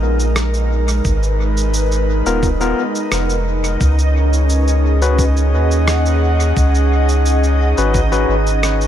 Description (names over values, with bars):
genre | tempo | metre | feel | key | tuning
ambient dub | 87 BPM | 4/4 | straight | unclear | A4 = 440 Hz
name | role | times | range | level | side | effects
airy breathy pad | sustained chords | 0.0-8.9 s | G#3 to F#5 | -20 LUFS | right 1 dB | chorus
soft dub sub bass | bass | 0.0-8.9 s | D#1 to D#2 | -15 LUFS | equal | none
backwards swelling texture | texture | 0.0-8.9 s | D#4 to D#5 | -25 LUFS | right 1 dB | built-in reverb
electronic shaker and rim click | drums | 0.2-8.9 s | none | -25 LUFS | right 1 dB | dub echo
electronic kick drum | drums | 1.0-8.1 s | none | -19 LUFS | equal | none
overdriven tine electric piano | stabs | 2.3-8.3 s | B3 to B4 | -23 LUFS | left 5 dB | dub echo
room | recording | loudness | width
little or no reverb | none | -13 LUFS | side -10 dB against mid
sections
0.0-8.9 A section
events
none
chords
0.0 G#m69; 3.8 C#7sus4